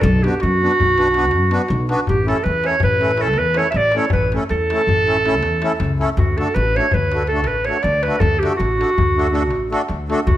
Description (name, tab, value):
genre	balkan folk, Balkan wedding band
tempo	322 BPM (eighths)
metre	11/8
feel	straight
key	D major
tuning	A4 = 438 Hz
part	clear clarinet	melody	0.0-10.4 s	F#4 to E5	-18 LUFS	right 1 dB	none
part	upright bass	bass	0.0-10.4 s	A1 to F#2	-21 LUFS	equal	none
part	darbuka	percussion	0.0-10.4 s	none	-24 LUFS	left 3 dB	none
part	accordion	accompaniment	0.2-10.2 s	A3 to B4	-23 LUFS	left 1 dB	light tremolo tuning
room	moderate recital hall reverb, RT60 1.6 s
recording	none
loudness	-15 LUFS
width	side -13 dB against mid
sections	0.0-10.4 A section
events	none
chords	0.0 Bm; 2.1 A; 6.2 D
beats	| 0.03 0.22 0.41 0.59 0.78 0.96 1.15 1.33 1.52 1.70 1.89 | 2.08 2.26 2.45 2.63 2.82 3.00 3.19 3.38 3.56 3.75 3.94 | 4.12 4.31 4.49 4.68 4.87 5.05 5.24 5.42 5.61 5.80 5.98 | 6.17 6.36 6.54 6.73 6.91 7.10 7.29 7.47 7.66 7.85 8.03 | 8.22 8.41 8.59 8.78 8.97 9.15 9.34 9.53 9.71 9.90 10.09 | 10.27